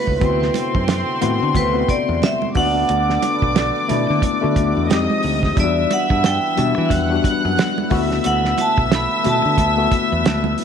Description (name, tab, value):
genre	lush 1970s-style soul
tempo	90 BPM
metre	4/4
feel	swing 58% on 16ths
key	unclear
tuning	A4 = 440 Hz
part	vibraphone with hard mallets	melody	0.0-9.9 s	B4 to B5	-22 LUFS	right 3 dB	tape echo
part	warm studio string section	second line	0.0-10.6 s	C4 to F#6	-22 LUFS	left 1 dB	none
part	tine electric piano	accompaniment	0.0-10.6 s	G3 to G4	-22 LUFS	left 10 dB	overdrive, fast stereo tremolo
part	mellow tonewheel organ	sustained chords	0.0-10.6 s	C3 to B4	-30 LUFS	right 1 dB	fast rotary speaker
part	modern bright fingered electric bass	bass	0.1-10.5 s	B1 to E3	-22 LUFS	equal	none
part	cloth-damped thuddy drum kit	drums	0.1-10.6 s	hi-hat, kick drum, snare drum	-21 LUFS	right 3 dB	none
part	congas	percussion	0.2-10.6 s	none	-28 LUFS	right 12 dB	none
room	light reverb, studio ambience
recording	1960s-style stereo with parts hard left and right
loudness	-15 LUFS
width	side -7 dB against mid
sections	0.0-10.6 A section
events	vibraphone solo 0.0-10.6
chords	0.2 D13; 2.6 Bm7; 4.9 Fm9; 5.6 Em9; 7.9 D69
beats	| 0.21 0.88 1.55 2.22 | 2.89 3.56 4.23 4.90 | 5.57 6.24 6.91 7.58 | 8.25 8.91 9.59 10.26